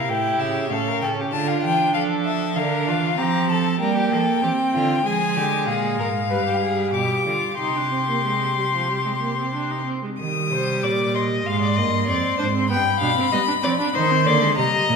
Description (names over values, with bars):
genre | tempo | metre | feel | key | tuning
classical, baroque-style fugue for string quartet | 96 BPM | 4/4 | straight | C minor from 5.1 s | A4 = 440 Hz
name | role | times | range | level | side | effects
rich violin | melody | 0.0-15.0 s | E5 to Eb6 | -23 LUFS | left 6 dB | none
warm violin | second line | 0.0-15.0 s | F4 to G5 | -26 LUFS | left 3 dB | none
rich viola | accompaniment | 0.0-15.0 s | F3 to E4 | -25 LUFS | right 4 dB | none
rich cello | bass | 0.0-15.0 s | F2 to G3 | -25 LUFS | right 5 dB | none
room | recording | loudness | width
wet scoring stage reverb, RT60 1.9 s | minimal, uncompressed stereo recording | -19 LUFS | side -5 dB against mid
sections
0.0-10.2 A section; 10.2-15.0 B section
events
none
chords
0.1 A7; 1.3 Dm; 2.6 Bb/D; 5.1 Ddim; 6.3 G7; 7.6 Cm; 11.5 Fm (rootless); 12.7 G7; 13.9 Cm